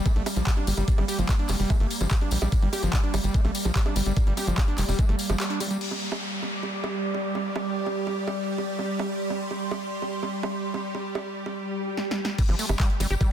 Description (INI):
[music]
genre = psychedelic trance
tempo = 146 BPM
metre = 4/4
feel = straight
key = G minor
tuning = A4 = 440 Hz
[part]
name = evolving wavetable pad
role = sustained chords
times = 0.0-13.3 s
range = G3 to G4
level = -34 LUFS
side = right 2 dB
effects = ensemble chorus, built-in reverb, sidechain pumping
[part]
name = overdriven acid bass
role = riff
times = 0.0-5.8, 12.4-13.3 s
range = F3 to G4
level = -32 LUFS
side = equal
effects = distortion, auto-pan, sidechain pumping, dub echo
[part]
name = airy breathy pad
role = texture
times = 0.0-11.6 s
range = G3 to D6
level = -32 LUFS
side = right 2 dB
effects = chorus, sidechain pumping
[part]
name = electronic kick drum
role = drums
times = 0.1-5.1, 12.4-13.3 s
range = none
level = -23 LUFS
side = equal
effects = none
[part]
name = techno drum kit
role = drums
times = 0.1-13.3 s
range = bongos, crash cymbal, handclaps, hi-hat, snare drum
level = -32 LUFS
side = right 2 dB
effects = overdrive
[part]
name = tambourine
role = percussion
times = 0.1-5.8, 12.4-13.3 s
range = none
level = -37 LUFS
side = left 8 dB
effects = none
[part]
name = tight sequencer bass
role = bass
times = 0.2-5.4, 12.5-13.2 s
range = F1 to Bb1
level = -26 LUFS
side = equal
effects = none
[part]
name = downlifter and swell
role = sound effects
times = 5.8-9.1, 11.7-12.4 s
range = none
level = -35 LUFS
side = equal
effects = none
[sound]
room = little or no reverb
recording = dense, heavily limited modern master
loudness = -24 LUFS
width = side -10 dB against mid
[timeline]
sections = 0.0-5.8 A section; 5.8-12.4 B section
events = break 5.4-5.8; band accent 5.4; swell 11.7-12.4; drum fill 12.0-12.4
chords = 0.0 G5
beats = 0.06 0.47 | 0.88 1.29 1.70 2.11 | 2.52 2.93 3.34 3.75 | 4.17 4.58 4.99 5.40 | 5.81 6.22 6.63 7.04 | 7.45 7.86 8.28 8.69 | 9.10 9.51 9.92 10.33 | 10.74 11.15 11.56 11.97 | 12.38 12.80 13.21